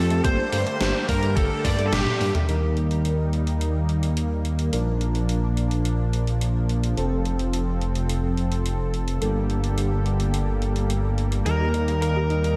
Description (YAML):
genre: synthwave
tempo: 107 BPM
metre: 4/4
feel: straight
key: unclear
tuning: A4 = 440 Hz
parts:
  - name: bluesy overdriven lead guitar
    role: melody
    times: 0.0-2.3, 11.5-12.6 s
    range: G4 to D5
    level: -29 LUFS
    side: equal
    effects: distortion, digital delay, slapback echo
  - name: string machine, violins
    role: second line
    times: 0.0-2.3 s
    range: G4 to D5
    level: -37 LUFS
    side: equal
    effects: none
  - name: soft supersaw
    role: sustained chords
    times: 0.0-12.6 s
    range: D3 to A4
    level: -32 LUFS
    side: equal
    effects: sidechain pumping
  - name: FM electric piano with soft pad layer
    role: stabs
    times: 0.0-12.6 s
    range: F3 to Bb4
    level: -34 LUFS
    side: equal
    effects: chorus, phaser, digital delay, slapback echo
  - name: dark detuned saw bass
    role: bass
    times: 0.0-12.6 s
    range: F1 to G2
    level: -26 LUFS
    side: equal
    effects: none
  - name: analog pluck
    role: arpeggios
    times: 0.1-2.4, 11.5-12.5 s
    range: A3 to Bb4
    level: -37 LUFS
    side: equal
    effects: none
  - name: gated 80s digital drum machine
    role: drums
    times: 0.1-12.6 s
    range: hi-hat, snare drum, toms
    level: -32 LUFS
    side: equal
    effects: gated reverb, gated reverb snare
  - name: electronic kick drum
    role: drums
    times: 0.2-1.8 s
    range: none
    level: -27 LUFS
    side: equal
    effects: none
room: moderate lush hall reverb, RT60 1.9 s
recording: big arena sound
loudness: -24 LUFS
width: mono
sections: 0.0-2.5 A section; 2.5-12.6 B section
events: drum fill 1.9-2.5; band accent 1.9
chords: 0.2 Gmadd9; 2.5 Eb; 4.7 Bb; 7.0 F; 9.2 Gmadd9; 11.5 Eb